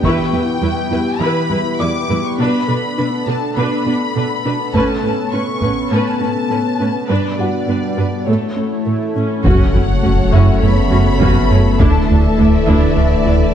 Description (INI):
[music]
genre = cinematic, hybrid orchestral and electronic film score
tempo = 102 BPM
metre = 4/4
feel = straight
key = unclear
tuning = A4 = 439 Hz
[part]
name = warm symphonic violin section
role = melody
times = 0.0-13.5 s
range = C#5 to D6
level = -24 LUFS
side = left 5 dB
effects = none
[part]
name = rich symphonic viola section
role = accompaniment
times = 0.0-13.3 s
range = A3 to B4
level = -23 LUFS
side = right 1 dB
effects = none
[part]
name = chorused pulse-width pad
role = sustained chords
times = 0.0-13.5 s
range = G3 to D5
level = -21 LUFS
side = left 2 dB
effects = none
[part]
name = soft round pluck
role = arpeggios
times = 0.0-13.4 s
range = D3 to A4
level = -23 LUFS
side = right 2 dB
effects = chorus, tape echo
[part]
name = rich symphonic cello section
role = bass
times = 0.0-13.3 s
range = D2 to B2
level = -21 LUFS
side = right 2 dB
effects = none
[part]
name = taiko ensemble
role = drums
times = 0.0-1.2, 4.7-5.9, 9.4-12.3 s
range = none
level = -19 LUFS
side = left 1 dB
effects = none
[part]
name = felt-muted upright piano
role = texture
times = 0.0-13.5 s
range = E4 to D6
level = -29 LUFS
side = left 2 dB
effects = tape echo
[part]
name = round analog bass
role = riff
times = 9.4-13.4 s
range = D2 to F#2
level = -16 LUFS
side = right 1 dB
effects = none
[part]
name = rich symphonic double bass section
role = bass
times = 9.4-13.3 s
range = F#1 to D2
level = -21 LUFS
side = right 3 dB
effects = none
[part]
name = warm symphonic violin section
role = second line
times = 9.5-13.5 s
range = A4 to E5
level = -24 LUFS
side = left 3 dB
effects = none
[part]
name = clear trombone section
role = sustained chords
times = 9.5-13.5 s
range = C#3 to A3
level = -24 LUFS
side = right 6 dB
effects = none
[part]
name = mellow French horn section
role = sustained chords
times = 9.5-13.5 s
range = D3 to B3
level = -23 LUFS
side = left 3 dB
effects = none
[part]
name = sub bass with octave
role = bass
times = 9.5-13.5 s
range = D1 to F#1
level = -19 LUFS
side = left 1 dB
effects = none
[part]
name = sub drop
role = sound effects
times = 9.5-11.8 s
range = none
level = -20 LUFS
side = left 1 dB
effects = none
[sound]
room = moderate scoring stage reverb, RT60 1.6 s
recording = dark, warm production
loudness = -13 LUFS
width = side -9 dB against mid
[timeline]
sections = 0.0-9.5 A section; 9.5-13.5 B section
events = impact 9.5-11.8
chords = 0.0 Em; 2.4 Bm7; 4.7 Aadd9; 7.1 G; 8.3 A; 9.5 F#m; 11.8 Dsus2